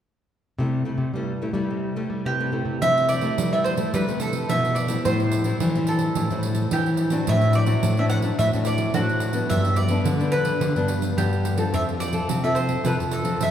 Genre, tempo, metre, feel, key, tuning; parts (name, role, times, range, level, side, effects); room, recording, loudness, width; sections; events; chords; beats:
samba and choro; 108 BPM; 4/4; straight; C major; A4 = 436 Hz
nylon-string guitar; accompaniment; 0.6-13.5 s; G2 to A4; -28 LUFS; left 1 dB
nylon-string guitar; bass; 0.6-13.5 s; F2 to G3; -24 LUFS; left 1 dB
bowl-back mandolin; melody; 2.3-13.5 s; F#4 to F#5; -25 LUFS; right 1 dB
pandeiro; percussion; 2.8-13.5 s; -28 LUFS; right 2 dB
wet church reverb, RT60 3.6 s; recorded in a church or concert hall; -20 LUFS; side -10 dB against mid
0.6-2.8 A section; 2.8-13.5 B section
0.6 C6; 5.1 Am7; 7.3 D7/A; 9.5 G; 11.7 F
| 0.59 1.15 1.71 2.27 | 2.82 3.38 3.94 4.49 | 5.05 5.61 6.17 6.72 | 7.28 7.83 8.39 8.95 | 9.51 10.06 10.62 11.18 | 11.73 12.29 12.85 13.40